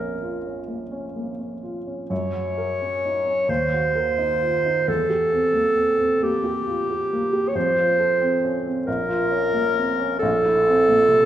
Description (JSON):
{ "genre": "classical, romantic duo for clarinet and grand piano", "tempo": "44 BPM (dotted quarters)", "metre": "6/8", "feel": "uneven beats, rubato", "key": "Bb minor", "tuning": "A4 = 440 Hz", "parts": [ { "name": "warm clarinet", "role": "melody", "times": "0.0-11.3 s", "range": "G4 to Db5", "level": "-20 LUFS", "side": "right 1 dB", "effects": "none" }, { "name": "warm baby grand piano", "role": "accompaniment", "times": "0.0-11.3 s", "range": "Bb1 to Bb4", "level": "-26 LUFS", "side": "right 1 dB", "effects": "none" } ], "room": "wet recital hall reverb, RT60 1.5 s", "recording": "heard from further back in the room", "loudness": "-19 LUFS", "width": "side -11 dB against mid", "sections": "0.0-2.1 A section; 2.1-11.3 B section", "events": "none", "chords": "0.0 Bbm; 2.1 Gb; 3.5 Cm7b5/Eb; 4.9 C7/E; 7.6 F; 8.9 Bbm; 10.2 C7/Bb" }